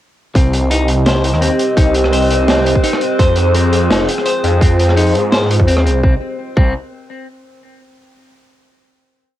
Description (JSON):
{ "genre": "half-time drum and bass", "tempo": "169 BPM", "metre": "4/4", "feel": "swing 54% on 16ths, half-time", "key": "C minor", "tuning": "A4 = 440 Hz", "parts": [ { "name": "dark analog pad", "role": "sustained chords", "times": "0.3-6.2 s", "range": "C4 to Eb5", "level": "-18 LUFS", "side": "equal", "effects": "chorus, sidechain pumping, cassette tape" }, { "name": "clean electric guitar", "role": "arpeggios", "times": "0.3-6.7 s", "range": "C4 to C5", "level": "-20 LUFS", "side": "left 3 dB", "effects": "cassette tape, analog delay" }, { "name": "electronic kick drum", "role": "drums", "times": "0.3-6.6 s", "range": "none", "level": "-12 LUFS", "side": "equal", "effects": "overdrive" }, { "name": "metallic inharmonic drone", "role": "texture", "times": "1.3-6.0 s", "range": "C4", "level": "-24 LUFS", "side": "right 2 dB", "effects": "chorus, built-in reverb, cassette tape" }, { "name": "phased detuned saw bass", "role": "bass", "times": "0.4-6.7 s", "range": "F1 to Ab2", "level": "-15 LUFS", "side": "equal", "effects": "phaser" }, { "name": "crunchy breakbeat drum kit", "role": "drums", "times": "0.4-5.9 s", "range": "hi-hat, rim click, snare drum", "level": "-19 LUFS", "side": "equal", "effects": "none" } ], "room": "light reverb", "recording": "home recording on cassette", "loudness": "-11 LUFS", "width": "side -13 dB against mid", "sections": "0.4-6.0 drop; 6.0-7.5 final chord", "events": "drop 0.4-6.0", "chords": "0.4 Cm; 3.2 Fm; 6.0 Cm" }